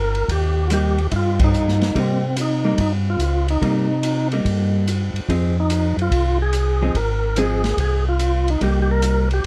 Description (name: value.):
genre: soul jazz organ trio.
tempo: 144 BPM.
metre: 4/4.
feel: swing 67% on 8ths.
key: C minor.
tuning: A4 = 439 Hz.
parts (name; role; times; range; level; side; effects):
percussive tonewheel organ; melody; 0.0-9.4 s; C4 to Bb4; -25 LUFS; equal; fast rotary speaker.
mellow tonewheel organ; bass; 0.0-9.5 s; G1 to C3; -22 LUFS; equal; slow rotary speaker.
open jazz drum kit; drums; 0.1-9.5 s; hi-hat, kick drum, ride cymbal, snare drum; -28 LUFS; equal; none.
vintage hollow-body jazz guitar; accompaniment; 0.7-9.3 s; F3 to Ab4; -24 LUFS; equal; none.
room: light reverb.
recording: close, detailed microphones.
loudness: -20 LUFS.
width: mono.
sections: 0.0-9.5 A section.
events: band accent 1.3.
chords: 0.0 Cm7; 5.3 Fm7; 8.6 Cm7.